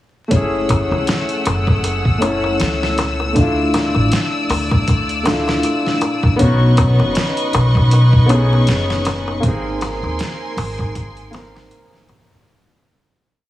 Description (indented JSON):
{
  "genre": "trip hop",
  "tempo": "79 BPM",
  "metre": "4/4",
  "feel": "swing 57% on 16ths",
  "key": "unclear",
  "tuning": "A4 = 437 Hz",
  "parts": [
    { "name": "warm upright piano", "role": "accompaniment", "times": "0.3-12.5 s", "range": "A3 to A#4", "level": "-20 LUFS", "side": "left 1 dB", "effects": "harmonic tremolo, tape echo" },
    { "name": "clear symphonic string section", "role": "sustained chords", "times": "0.3-12.4 s", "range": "A3 to E6", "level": "-24 LUFS", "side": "left 1 dB", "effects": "none" },
    { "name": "upright bass", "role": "bass", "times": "0.3-12.4 s", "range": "F#1 to D#2", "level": "-17 LUFS", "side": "equal", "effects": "none" },
    { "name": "dusty soul sampler-style drum kit", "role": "drums", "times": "0.3-12.5 s", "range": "hi-hat, kick drum, snare drum", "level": "-19 LUFS", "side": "equal", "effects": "none" },
    { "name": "darbuka", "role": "percussion", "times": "0.3-12.4 s", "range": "none", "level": "-25 LUFS", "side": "left 1 dB", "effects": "none" }
  ],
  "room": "little or no reverb",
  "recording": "heavily compressed radio sound, multiband compression, vinyl crackle, small room ambience",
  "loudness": "-14 LUFS",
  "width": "side -14 dB against mid",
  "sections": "0.3-12.5 groove",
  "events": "fade-out 8.4-12.5",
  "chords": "0.3 F#m7; 3.4 Dmadd9; 6.4 Badd9; 9.4 G#add9"
}